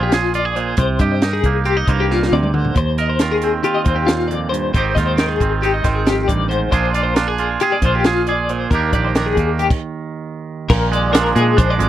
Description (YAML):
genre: math rock and midwest emo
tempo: 273 BPM (eighths)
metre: 9/8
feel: straight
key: Eb major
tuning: A4 = 443 Hz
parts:
  - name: twangy electric guitar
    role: accompaniment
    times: 0.0-11.9 s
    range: Eb2 to Bb4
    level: -20 LUFS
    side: right 6 dB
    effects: none
  - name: twelve-string electric guitar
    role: arpeggios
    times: 0.0-11.9 s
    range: F4 to Eb5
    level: -20 LUFS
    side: left 5 dB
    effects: tremolo
  - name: fingered electric bass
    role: bass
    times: 0.0-11.9 s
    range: Ab1 to Bb2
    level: -20 LUFS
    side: equal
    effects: none
  - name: compact cocktail drum kit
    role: drums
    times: 0.1-11.9 s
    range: crash cymbal, hi-hat, kick drum, snare drum, toms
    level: -18 LUFS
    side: equal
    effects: none
room: light reverb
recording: dry, close 1970s-style studio recording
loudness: -14 LUFS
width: side -12 dB against mid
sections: 0.0-10.7 A section; 10.7-11.9 B section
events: drum fill 2.1-2.8; stop 9.7-10.7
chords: 0.0 Bb13; 0.8 Cm7; 2.8 Eb69; 4.7 Abmaj7; 6.7 Bb9; 8.7 Ebmaj7; 10.7 Bb7